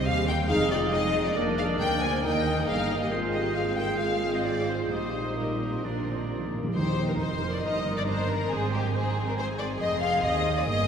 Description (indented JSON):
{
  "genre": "quick classical-period movement for symphony orchestra",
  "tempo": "128-142 BPM",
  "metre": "4/4",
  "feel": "rubato",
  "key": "Eb major",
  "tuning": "A4 = 440 Hz",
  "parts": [
    { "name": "rich studio violin section", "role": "melody", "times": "0.0-10.9 s", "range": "Bb4 to Eb6", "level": "-34 LUFS", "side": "left 3 dB", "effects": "none" },
    { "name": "clear oboe", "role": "second line", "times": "0.0-6.5 s", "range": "C5 to Eb5", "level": "-36 LUFS", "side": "right 1 dB", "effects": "none" },
    { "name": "mellow hollow large flute ensemble", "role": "second line", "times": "0.0-6.5 s", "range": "Eb4 to C5", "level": "-35 LUFS", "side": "equal", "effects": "none" },
    { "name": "warm clarinet", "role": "second line", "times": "0.0-6.5 s", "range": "F4 to Bb4", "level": "-36 LUFS", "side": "equal", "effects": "none" },
    { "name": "warm studio viola section", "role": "accompaniment", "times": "0.0-10.9 s", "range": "G3 to C5", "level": "-33 LUFS", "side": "right 1 dB", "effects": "none" },
    { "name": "rich studio cello section", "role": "bass", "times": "0.0-10.9 s", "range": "D2 to Bb2", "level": "-34 LUFS", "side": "right 2 dB", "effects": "none" },
    { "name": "warm studio double bass section", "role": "bass", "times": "0.0-10.9 s", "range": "F1 to Eb2", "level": "-33 LUFS", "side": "right 3 dB", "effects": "none" },
    { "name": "rich studio violin section", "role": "second line", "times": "0.1-10.9 s", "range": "G4 to Ab5", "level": "-31 LUFS", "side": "left 3 dB", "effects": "none" },
    { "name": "mellow French horn section", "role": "sustained chords", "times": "0.5-6.5 s", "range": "F3 to F4", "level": "-34 LUFS", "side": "equal", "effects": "none" },
    { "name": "timpani", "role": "percussion", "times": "5.8-7.4 s", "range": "Bb2 to Eb3", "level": "-34 LUFS", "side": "right 1 dB", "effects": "none" }
  ],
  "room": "wet cathedral reverb, RT60 5.0 s",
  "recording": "none",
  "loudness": "-24 LUFS",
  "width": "side -7 dB against mid",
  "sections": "0.0-6.8 A section; 6.8-10.9 B section",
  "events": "timpani fill 5.8-6.8",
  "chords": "0.5 Fm7; 1.4 Bb/F; 2.2 Eb; 3.1 Fm/Ab; 4.9 Eb/Bb; 5.8 Bb; 6.8 Eb; 7.6 Eb/G; 8.5 Ab; 10.2 Eb",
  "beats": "0.06 0.49 0.92 | 1.36 1.81 2.24 2.68 | 3.12 3.56 4.00 4.45 | 4.91 5.37 5.84 6.29 | 6.75 7.20 7.63 8.07 | 8.51 8.95 9.38 9.81 | 10.25 10.67"
}